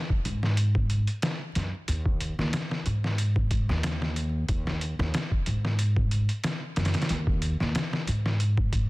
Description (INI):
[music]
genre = trip hop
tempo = 92 BPM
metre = 4/4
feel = swing 54% on 16ths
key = unclear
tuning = A4 = 440 Hz
[part]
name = trip hop sampler-style drum kit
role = drums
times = 0.1-8.9 s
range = hi-hat, kick drum, snare drum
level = -28 LUFS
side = equal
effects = none
[part]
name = upright bass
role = bass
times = 0.3-8.9 s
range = Eb2 to Ab2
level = -26 LUFS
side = equal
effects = none
[sound]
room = little or no reverb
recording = dense, heavily limited modern master, vinyl crackle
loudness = -25 LUFS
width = side -21 dB against mid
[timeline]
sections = 0.0-8.9 A section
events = none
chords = none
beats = 0.57 1.23 | 1.88 2.53 3.18 3.84 | 4.49 5.14 5.79 6.44 | 7.10 7.75 8.40